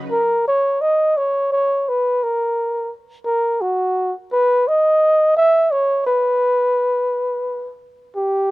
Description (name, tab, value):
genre	folk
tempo	86 BPM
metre	3/4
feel	straight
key	B major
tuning	A4 = 439 Hz
part	breathy flugelhorn	melody	0.1-8.5 s	F#4 to E5	-16 LUFS	equal	none
room	little or no reverb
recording	close, detailed microphones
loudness	-16 LUFS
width	side -19 dB against mid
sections	0.1-8.5 A section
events	none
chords	none